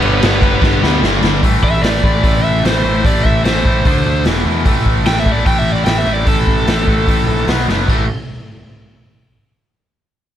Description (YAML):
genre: punk rock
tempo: 149 BPM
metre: 4/4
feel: straight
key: unclear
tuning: A4 = 440 Hz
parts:
  - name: overdriven electric guitar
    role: melody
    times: 0.0-7.4 s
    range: B3 to G5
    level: -19 LUFS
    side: right 2 dB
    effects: none
  - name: distorted electric guitar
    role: riff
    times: 0.0-8.0 s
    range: E2 to D4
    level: -20 LUFS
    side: left 14 dB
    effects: distortion
  - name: heavy high-gain guitar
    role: riff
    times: 0.0-1.4 s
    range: G2 to G3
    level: -20 LUFS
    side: equal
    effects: distortion
  - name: tight distorted guitar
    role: riff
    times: 0.0-8.0 s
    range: E2 to D4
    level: -21 LUFS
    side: right 13 dB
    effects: distortion
  - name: fuzz picked electric bass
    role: bass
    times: 0.0-8.1 s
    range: E1 to E2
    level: -18 LUFS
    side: equal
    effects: overdrive
  - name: raw garage drum kit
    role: drums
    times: 0.0-8.0 s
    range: crash cymbal, hi-hat, kick drum, snare drum, splash cymbal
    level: -16 LUFS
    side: equal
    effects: none
room: little or no reverb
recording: none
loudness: -11 LUFS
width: side -11 dB against mid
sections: 0.0-1.4 A section; 1.4-7.9 B section; 7.9-9.5 C section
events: drum fill 0.6-1.4, 7.7; overdriven electric guitar solo 1.4-7.9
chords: 0.0 G; 1.4 Am; 3.8 D5; 4.3 E5; 4.7 A5; 7.5 B5; 7.9 A5